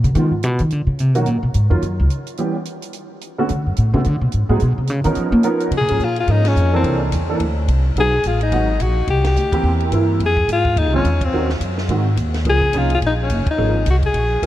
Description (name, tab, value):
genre	jazz, small-group swing and bop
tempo	214 BPM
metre	4/4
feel	swing 60% on 8ths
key	Db major from 5.7 s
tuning	A4 = 441 Hz
part	upright bass	bass	0.0-14.5 s	Gb1 to A#3	-17 LUFS	equal	none
part	compact cocktail drum kit	drums	0.0-14.5 s	hi-hat, kick drum, ride cymbal, snare drum	-28 LUFS	equal	none
part	warm baby grand piano	accompaniment	0.2-14.5 s	D3 to A#4	-22 LUFS	right 2 dB	ensemble chorus
part	bright alto saxophone	melody	5.8-14.5 s	C4 to Ab4	-20 LUFS	left 3 dB	analog delay
room	light reverb, small room ambience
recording	cassette tape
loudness	-15 LUFS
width	side -14 dB against mid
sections	0.0-5.7 A section; 5.7-14.5 B section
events	upright bass solo 0.0-5.7; band accent 6.4, 9.2, 11.2, 13.4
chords	0.2 Fm7b5; 0.7 A#aug; 1.3 D#m9; 2.4 C#m7b5; 2.9 F#5; 3.5 Bm9; 4.6 Bmaj9#11; 5.2 C#13; 5.7 Db6; 6.8 C13; 8.0 Cb6; 9.1 C7; 10.2 Fm7; 11.3 Ebm7; 11.9 Ab7; 12.5 Db6